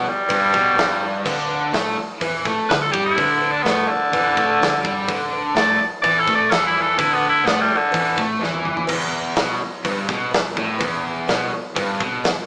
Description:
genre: classic rock.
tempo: 126 BPM.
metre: 4/4.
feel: straight.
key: E minor.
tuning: A4 = 440 Hz.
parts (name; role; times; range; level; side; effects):
raspy tenor saxophone; melody; 0.0-8.2 s; D3 to D5; -20 LUFS; equal; none.
crunchy overdriven guitar; riff; 0.0-12.4 s; E2 to A3; -29 LUFS; equal; none.
distorted electric guitar; riff; 0.0-12.4 s; E2 to A3; -27 LUFS; equal; distortion.
hollow-body short-scale picked electric bass; bass; 0.0-12.5 s; E1 to A2; -38 LUFS; equal; none.
big rock drum kit; drums; 0.3-12.4 s; crash cymbal, hi-hat, kick drum, snare drum, toms; -26 LUFS; equal; none.
cowbell; percussion; 0.3-12.4 s; none; -35 LUFS; equal; none.
room: moderate stone room reverb, RT60 1.0 s.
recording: band playing live in one room, small speaker sound.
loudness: -20 LUFS.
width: mono.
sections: 0.0-8.9 A section; 8.9-12.5 B section.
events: tenor saxophone solo 0.0-8.9; drum fill 8.4-8.9.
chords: 0.0 Em (rootless); 1.3 D5; 8.9 Em.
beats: 0.30 0.78 | 1.26 1.74 2.22 2.69 | 3.17 3.65 4.13 4.61 | 5.08 5.56 6.04 6.52 | 7.00 7.47 7.95 8.43 | 8.90 9.38 9.86 10.34 | 10.81 11.29 11.77 12.25.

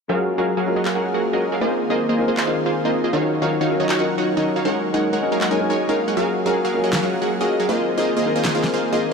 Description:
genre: future bass.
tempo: 158 BPM.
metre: 4/4.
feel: half-time.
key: Gb lydian.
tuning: A4 = 440 Hz.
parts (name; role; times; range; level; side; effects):
clear grand piano; accompaniment; 0.1-9.1 s; Gb3 to Bb4; -24 LUFS; left 3 dB; dub echo.
airy breathy pad; sustained chords; 0.1-9.1 s; Eb3 to F5; -28 LUFS; right 1 dB; chorus.
supersaw stab; riff; 0.1-9.1 s; Eb3 to Ab5; -20 LUFS; right 1 dB; low-pass filter, dub echo.
electronic handclaps and snare drum; drums; 0.9-8.7 s; none; -28 LUFS; equal; none.
room: moderate shimmer reverb, RT60 5.5 s.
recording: none.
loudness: -18 LUFS.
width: side -5 dB against mid.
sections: 0.1-9.1 A section.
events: none.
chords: 0.1 Gbmaj9; 1.6 Bb9sus4; 3.1 Ebm9; 4.7 Gbmaj9; 7.7 Bb9sus4.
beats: | 0.09 0.47 0.85 1.23 | 1.61 1.99 2.37 2.75 | 3.13 3.51 3.89 4.27 | 4.65 5.03 5.41 5.79 | 6.17 6.55 6.93 7.31 | 7.69 8.07 8.45 8.83.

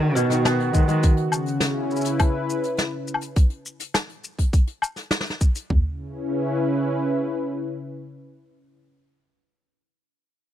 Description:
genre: folktronica.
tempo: 103 BPM.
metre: 4/4.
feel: straight.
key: C# dorian.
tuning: A4 = 442 Hz.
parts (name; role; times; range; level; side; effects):
warm analog pad; sustained chords; 0.0-8.8 s; C#3 to B4; -25 LUFS; equal; chorus, vintage 12-bit sampler grit.
kora; arpeggios; 0.0-2.3 s; B2 to B3; -26 LUFS; left 1 dB; tape echo.
dark cello; bass; 0.0-1.0 s; B2 to D#3; -23 LUFS; equal; none.
jazz brush drum kit; drums; 0.2-5.7 s; hi-hat, shaker, snare drum, woodblock; -26 LUFS; left 2 dB; none.
organic electronic drum kit; drums; 0.7-5.8 s; kick drum, toms; -18 LUFS; equal; none.
room: small room ambience.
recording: dry, close 1970s-style studio recording.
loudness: -21 LUFS.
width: side -11 dB against mid.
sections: 0.0-5.7 A section; 5.7-8.0 B section.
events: none.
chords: 0.0 G#m7/B; 1.0 C#m7; 3.4 N.C.; 5.7 C#m7.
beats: 0.46 | 1.04 1.62 2.20 2.79 | 3.37 3.95 4.53 5.12 | 5.70 6.28 6.86 7.45.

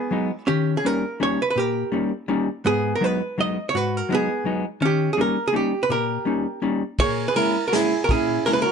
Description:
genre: musette waltz.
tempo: 165 BPM.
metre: 3/4.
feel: straight.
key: unclear.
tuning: A4 = 442 Hz.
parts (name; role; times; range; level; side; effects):
archtop guitar, miked and amplified; melody; 0.0-8.7 s; B3 to D#5; -22 LUFS; right 2 dB; plate reverb.
hollow-body jazz guitar; accompaniment; 0.1-8.7 s; G#2 to E4; -24 LUFS; left 3 dB; none.
accordion; second line; 7.0-8.7 s; E4 to A#4; -25 LUFS; right 10 dB; none.
vintage brush drum kit; drums; 7.0-8.6 s; kick drum, ride cymbal, snare drum; -27 LUFS; equal; none.
room: moderate studio reverb, RT60 0.6 s.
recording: nothing above 10.5 kHz.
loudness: -20 LUFS.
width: side -6 dB against mid.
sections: 0.0-8.7 A section.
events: none.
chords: 0.5 D#7; 2.6 G#m7; 4.8 D#7; 7.0 A#m7b5.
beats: 0.12 | 0.47 0.84 1.20 | 1.56 1.92 2.28 | 2.65 3.01 3.37 | 3.74 4.10 4.46 | 4.82 5.18 5.54 | 5.90 6.27 6.63 | 7.00 7.37 7.73 | 8.10 8.46.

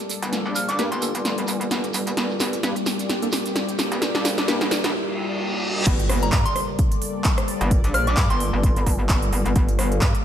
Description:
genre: bass house.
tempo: 130 BPM.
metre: 4/4.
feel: swing 56% on 16ths.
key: G minor.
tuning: A4 = 441 Hz.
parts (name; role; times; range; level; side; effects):
sweeping resonant pad; sustained chords; 0.0-10.2 s; G3 to F5; -29 LUFS; left 1 dB; chorus, sidechain pumping.
shekere; percussion; 0.0-4.9 s; none; -33 LUFS; right 5 dB; none.
riser, reverse cymbal and impact; sound effects; 2.8-7.7 s; none; -31 LUFS; equal; none.
big-room dance drum kit; drums; 0.1-10.2 s; crash cymbal, handclaps, hi-hat, rim click, snare drum; -25 LUFS; equal; overdrive.
metallic wobble bass; bass; 0.2-10.1 s; G1 to G2; -24 LUFS; equal; chorus, overdrive, sidechain pumping, high-pass filter.
soft synth bell; melody; 0.6-1.6, 6.2-8.9 s; Bb5 to F6; -28 LUFS; left 1 dB; chorus, dub echo.
percussive organ stab; stabs; 0.8-4.6 s; Bb3 to Bb4; -31 LUFS; left 1 dB; none.
electronic kick drum; drums; 5.9-10.1 s; none; -20 LUFS; equal; none.
room: light reverb.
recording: none.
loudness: -20 LUFS.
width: side -10 dB against mid.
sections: 0.0-5.9 A section; 5.9-10.2 B section.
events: build-up 0.0-5.9; drum fill 0.0-4.9; break 4.9-5.9; reverse cymbal 4.9-5.9; drop 5.9-10.2; impact 5.9-7.7.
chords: 0.0 Gmadd9.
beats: | 0.33 0.79 1.25 1.71 | 2.17 2.63 3.10 3.56 | 4.02 4.48 4.94 5.41 | 5.87 6.33 6.79 7.25 | 7.71 8.17 8.63 9.10 | 9.56 10.02.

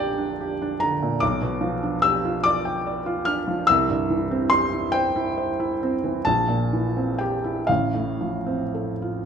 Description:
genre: classical, romantic nocturne for solo piano.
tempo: 34-51 BPM (dotted quarters).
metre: 6/8.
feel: rubato.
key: unclear.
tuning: A4 = 440 Hz.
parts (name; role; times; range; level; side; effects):
felt-muted upright piano; solo; 0.0-9.3 s; A1 to F6; -21 LUFS; equal; none.
room: wet large studio reverb, RT60 1.2 s.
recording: heard from further back in the room.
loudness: -21 LUFS.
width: side -7 dB against mid.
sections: 0.0-9.3 A section.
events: none.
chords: 0.0 Gm/Bb; 1.2 G7/B; 3.7 C; 6.3 C7/Bb; 7.7 F/A.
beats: | 1.22 2.45 | 3.68 4.93 | 6.25 7.69.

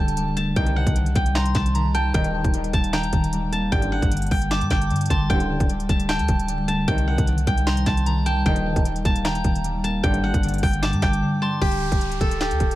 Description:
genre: hip hop, trap.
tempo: 152 BPM.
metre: 4/4.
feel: half-time.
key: G harmonic minor.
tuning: A4 = 440 Hz.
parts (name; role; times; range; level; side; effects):
steel-string zither; melody; 0.0-12.8 s; G4 to Bb5; -27 LUFS; right 1 dB; low-pass filter.
soft synth bell; second line; 0.0-11.6 s; A5 to D6; -32 LUFS; right 1 dB; chorus, phaser, ping-pong delay.
concert harp; accompaniment; 0.0-12.8 s; G2 to Bb3; -26 LUFS; left 1 dB; low-pass filter.
clean 808-style bass; bass; 0.0-12.8 s; D1 to G2; -25 LUFS; equal; none.
trap drum kit; drums; 0.1-12.8 s; handclaps, hi-hat, kick drum, snare drum; -23 LUFS; equal; none.
warm brass ensemble; stabs; 0.6-10.4 s; A1 to Eb3; -33 LUFS; left 1 dB; ping-pong delay.
downlifter; sound effects; 11.6-12.8 s; none; -35 LUFS; left 1 dB; none.
room: little or no reverb.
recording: vinyl crackle.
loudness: -19 LUFS.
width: side -15 dB against mid.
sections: 0.0-11.6 A section; 11.6-12.8 B section.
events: drums muted 11.2-11.6.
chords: 0.0 Dsus4; 0.6 Cm; 2.1 Eb; 3.7 Gsus2; 5.3 Dsus4; 6.9 Cm; 8.5 Eb; 10.0 Gsus2; 11.6 Dsus4.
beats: 0.17 | 0.56 0.96 1.35 1.75 | 2.14 2.54 2.93 3.33 | 3.72 4.12 4.51 4.91 | 5.30 5.70 6.09 6.48 | 6.88 7.27 7.67 8.06 | 8.46 8.85 9.25 9.64 | 10.04 10.43 10.83 11.22 | 11.62 12.01 12.40.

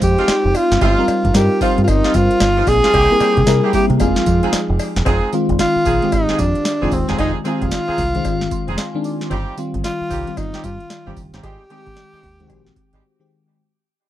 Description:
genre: R&B, new jack swing.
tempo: 113 BPM.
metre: 4/4.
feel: swing 63% on 16ths.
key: F minor.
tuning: A4 = 441 Hz.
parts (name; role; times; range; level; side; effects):
mellow tenor saxophone; melody; 0.0-13.0 s; C4 to Ab4; -18 LUFS; equal; tape echo.
FM electric piano with soft pad layer; accompaniment; 0.0-13.6 s; Eb3 to C6; -21 LUFS; left 2 dB; chorus, phaser.
deep dub fingered electric bass; bass; 0.0-13.0 s; Eb1 to C3; -19 LUFS; equal; none.
booming analog drum machine; drums; 0.0-13.0 s; hi-hat, kick drum, snare drum, tambourine; -22 LUFS; equal; overdrive.
dark horn section; stabs; 0.2-13.0 s; F3 to Ab4; -24 LUFS; right 3 dB; none.
cowbell; percussion; 0.3-12.7 s; none; -31 LUFS; left 9 dB; none.
room: little or no reverb.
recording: dry, close 1970s-style studio recording.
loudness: -14 LUFS.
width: side -13 dB against mid.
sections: 0.0-5.1 A section; 5.1-13.6 B section.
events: fade-out 5.1-13.6; FM electric piano fill 8.2-9.3; break 13.0-13.6.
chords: 0.0 Fm7; 0.8 Eb69/G; 2.9 C7; 4.0 Fm7; 9.3 Eb69/G; 11.4 Abmaj7.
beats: 0.28 | 0.81 1.34 1.88 2.41 | 2.94 3.47 4.00 4.53 | 5.06 5.59 6.12 6.65 | 7.18 7.72 8.25 8.78 | 9.31 9.84 10.37 10.90 | 11.43 11.96 12.49 13.03.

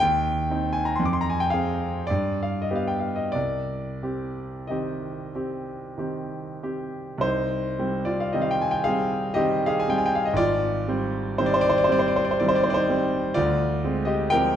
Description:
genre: classical, romantic nocturne for solo piano.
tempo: 44-65 BPM.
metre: 3/4.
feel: rubato.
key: C minor.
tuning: A4 = 441 Hz.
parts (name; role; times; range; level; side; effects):
clear concert grand piano; solo; 0.0-14.6 s; Ab1 to D6; -22 LUFS; equal; none.
room: wet recital hall reverb, RT60 1.5 s.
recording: dark, warm production, nothing above 10.6 kHz.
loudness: -22 LUFS.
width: side -10 dB against mid.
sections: 0.0-7.2 A section; 7.2-14.6 B section.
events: none.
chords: 0.0 Cm/Eb; 1.0 Fm; 2.1 G; 3.3 Cm; 13.4 Dm7b5.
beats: | 0.01 1.00 2.10 | 3.35 4.70 5.98 | 7.24 8.34 9.37 | 10.39 11.38 12.41 | 13.37 14.32.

